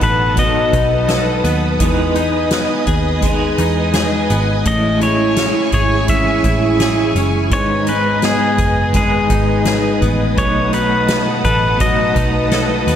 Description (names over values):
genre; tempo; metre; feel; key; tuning
dream pop; 84 BPM; 4/4; straight; B mixolydian; A4 = 439 Hz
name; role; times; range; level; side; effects
pedal steel guitar; melody; 0.0-12.8 s; G#4 to E5; -18 LUFS; left 2 dB; tape echo
electric guitar through a small old amp; accompaniment; 0.0-13.0 s; G#2 to A4; -21 LUFS; right 2 dB; tremolo, lush chorus
string machine, violas; sustained chords; 0.0-13.0 s; E4 to D#6; -22 LUFS; right 2 dB; ensemble chorus
twelve-string electric guitar; arpeggios; 0.0-13.0 s; G#2 to A4; -21 LUFS; left 4 dB; lush chorus, tape echo
vintage muted picked electric bass; bass; 0.0-13.0 s; F#1 to E2; -20 LUFS; right 1 dB; none
soft-mallet drum kit; drums; 0.0-13.0 s; hi-hat, kick drum, snare drum; -20 LUFS; equal; none
room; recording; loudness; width
moderate scoring stage reverb, RT60 2.0 s; none; -13 LUFS; side -9 dB against mid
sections
0.0-13.0 A section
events
none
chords
0.0 B7; 1.8 Emaj7; 4.7 Amaj7; 7.5 G#m; 10.4 B7